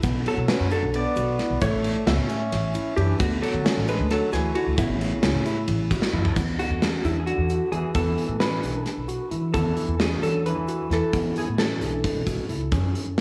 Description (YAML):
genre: progressive instrumental, band music in an uneven meter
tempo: 265 BPM (eighths)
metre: 7/8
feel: straight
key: E mixolydian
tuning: A4 = 440 Hz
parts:
  - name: barky tine electric piano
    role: arpeggios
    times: 0.0-13.2 s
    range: A3 to F#4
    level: -33 LUFS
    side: equal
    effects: diffuse ambient delay
  - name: upright bass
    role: bass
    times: 0.0-13.2 s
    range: A1 to E3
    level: -29 LUFS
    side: equal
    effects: none
  - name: gated 80s drum kit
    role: drums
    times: 0.0-13.2 s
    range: crash cymbal, hi-hat, kick drum, ride cymbal, snare drum, toms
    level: -29 LUFS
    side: equal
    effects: none
  - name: tube shaker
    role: percussion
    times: 0.0-13.2 s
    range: none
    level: -59 LUFS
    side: equal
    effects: none
  - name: vintage hollow-body jazz guitar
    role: melody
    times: 0.3-12.5 s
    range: E4 to E5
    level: -31 LUFS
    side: equal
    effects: subtle chorus, diffuse ambient delay
  - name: clear trombone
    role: second line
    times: 0.3-12.5 s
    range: C#3 to C#4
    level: -34 LUFS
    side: equal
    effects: none
room: moderate plate reverb, RT60 1.8 s, small room ambience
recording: dreamy mix soaked in reverb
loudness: -24 LUFS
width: mono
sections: 0.0-6.4 A section; 6.4-13.2 B section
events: drum fill 6.0-6.4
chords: 0.0 Bm; 1.6 D69; 4.8 Aadd9; 6.4 E7sus4